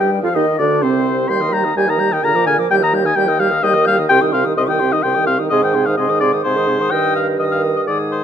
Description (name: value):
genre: quick classical-period movement for wind quintet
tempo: 127 BPM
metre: 3/4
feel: straight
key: Eb major from 4.1 s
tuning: A4 = 440 Hz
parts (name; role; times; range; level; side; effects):
- silver concert flute; melody; 0.0-8.2 s; C5 to G6; -24 LUFS; left 8 dB; none
- mellow oboe; second line; 0.0-8.2 s; C5 to C6; -17 LUFS; left 3 dB; none
- warm French horn; accompaniment; 0.0-8.2 s; C3 to G3; -22 LUFS; equal; none
- warm clarinet; accompaniment; 0.0-8.2 s; C4 to C5; -22 LUFS; right 10 dB; none
- mellow bassoon; bass; 0.0-8.2 s; C2 to Bb2; -19 LUFS; right 3 dB; none
room: moderate recital hall reverb, RT60 1.5 s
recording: close, detailed microphones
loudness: -13 LUFS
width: side -8 dB against mid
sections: 0.0-8.2 A section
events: none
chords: 0.0 Cm/Eb; 1.3 Eb; 2.2 Bb7; 2.7 Eb; 4.1 Cm; 5.5 Ab; 6.9 Eb/G